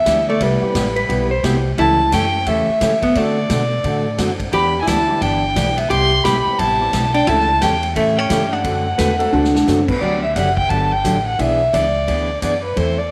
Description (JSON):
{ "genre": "country, western swing", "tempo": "175 BPM", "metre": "4/4", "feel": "swing 62% on 8ths", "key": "G major", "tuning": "A4 = 440 Hz", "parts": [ { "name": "dark fiddle", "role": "melody", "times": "0.0-13.1 s", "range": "B4 to C6", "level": "-21 LUFS", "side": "equal", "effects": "slapback echo" }, { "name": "archtop guitar, miked and amplified", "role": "second line", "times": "0.0-9.7 s", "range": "G3 to G4", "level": "-24 LUFS", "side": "equal", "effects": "none" }, { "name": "upright bass", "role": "bass", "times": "0.0-13.1 s", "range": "F#1 to E3", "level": "-25 LUFS", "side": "equal", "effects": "none" }, { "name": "dark upright piano", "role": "accompaniment", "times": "0.1-2.0, 4.2-11.6 s", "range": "E3 to A4", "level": "-33 LUFS", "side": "equal", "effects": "none" }, { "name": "picked steel-string acoustic guitar", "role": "accompaniment", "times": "0.1-13.0 s", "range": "C3 to A4", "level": "-25 LUFS", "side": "equal", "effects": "none" }, { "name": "swinging big-band drum kit", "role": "drums", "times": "0.1-12.9 s", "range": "crash cymbal, hi-hat, kick drum, ride cymbal, snare drum, toms", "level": "-28 LUFS", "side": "equal", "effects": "none" }, { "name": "clean lap steel guitar", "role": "second line", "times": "1.0-1.7, 9.0-9.9 s", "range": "D4 to C5", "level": "-22 LUFS", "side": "equal", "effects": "none" } ], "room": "wet echo chamber reverb, RT60 2.1 s", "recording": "none", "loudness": "-17 LUFS", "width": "mono", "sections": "0.0-10.0 A section; 10.0-13.1 B section", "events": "drum fill 9.3-9.7", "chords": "0.4 Cmaj7; 1.8 A7/C#; 3.2 D7; 4.5 Em7; 5.9 Cmaj7; 7.3 A7/C#; 8.6 D7; 10.0 Gmaj7; 11.4 E7" }